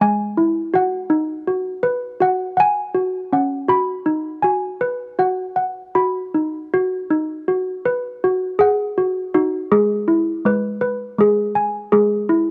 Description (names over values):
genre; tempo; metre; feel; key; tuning
children's music, lullaby; 81 BPM; 4/4; rubato; B major; A4 = 439 Hz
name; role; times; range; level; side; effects
malleted handbells; solo; 0.0-12.5 s; G#3 to B5; -19 LUFS; equal; none
room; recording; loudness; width
little or no reverb; dry, close 1970s-style studio recording; -20 LUFS; mono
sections
0.0-6.7 A section; 6.7-12.5 A section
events
none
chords
0.0 E; 0.7 B; 2.2 F#5; 3.7 B; 9.7 E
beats
0.01 | 0.74 1.47 2.22 2.96 | 3.70 4.44 5.19 5.96 | 6.73 7.49 8.24 8.98 | 9.73 10.46 11.19 11.93